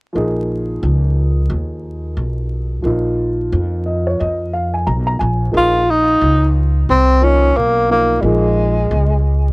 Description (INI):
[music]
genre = hip hop, jazz-hop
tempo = 89 BPM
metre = 4/4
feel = swing 61% on 16ths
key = Bb minor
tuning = A4 = 441 Hz
[part]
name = dark upright piano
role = accompaniment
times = 0.1-8.8 s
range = F3 to Bb5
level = -20 LUFS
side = equal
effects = cassette tape
[part]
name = upright bass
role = bass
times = 0.2-9.5 s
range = Bb1 to F2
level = -16 LUFS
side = equal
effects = none
[part]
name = breathy tenor saxophone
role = melody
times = 5.6-9.3 s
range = G3 to F4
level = -14 LUFS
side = equal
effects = analog delay
[sound]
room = light reverb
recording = home recording on cassette, vinyl crackle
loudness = -13 LUFS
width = side -29 dB against mid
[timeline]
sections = 0.2-5.5 A section; 5.5-9.5 B section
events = upright piano fill 3.5-5.5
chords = 0.2 Bbm7; 5.2 Absus2/Bb; 5.5 Bbm11